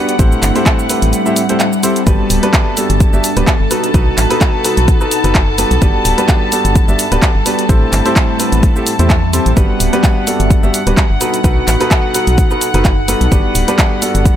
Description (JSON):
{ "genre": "piano house", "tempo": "128 BPM", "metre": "4/4", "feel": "swing 55% on 16ths", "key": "G major", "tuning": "A4 = 441 Hz", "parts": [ { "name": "warm studio violin section", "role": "sustained chords", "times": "0.0-14.4 s", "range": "A4 to A5", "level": "-21 LUFS", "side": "left 3 dB", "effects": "vintage 12-bit sampler grit, sidechain pumping" }, { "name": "clear grand piano", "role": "riff", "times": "0.0-14.4 s", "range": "G2 to E5", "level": "-17 LUFS", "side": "right 1 dB", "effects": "sidechain pumping, dub echo" }, { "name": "ethereal airy pad", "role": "texture", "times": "0.0-14.4 s", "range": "G3 to B5", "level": "-20 LUFS", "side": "equal", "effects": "ensemble chorus, built-in reverb, sidechain pumping" }, { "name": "punchy analog drum machine", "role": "drums", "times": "0.1-14.4 s", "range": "handclaps, hi-hat, shaker", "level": "-18 LUFS", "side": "right 1 dB", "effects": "none" }, { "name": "organ-like FM bass", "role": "bass", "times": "0.2-14.3 s", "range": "D1 to E2", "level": "-15 LUFS", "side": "equal", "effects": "tube saturation, sidechain pumping" }, { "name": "electronic kick drum", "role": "drums", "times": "0.2-14.4 s", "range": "none", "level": "-12 LUFS", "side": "equal", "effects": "overdrive" } ], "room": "little or no reverb", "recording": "none", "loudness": "-10 LUFS", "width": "side -10 dB against mid", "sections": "0.0-14.4 A section", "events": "none", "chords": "0.2 Am7; 2.1 Gmaj7; 3.7 B7; 5.8 Gmaj7; 7.7 Am7; 9.6 Gmaj7; 11.2 B7; 13.3 Gmaj7" }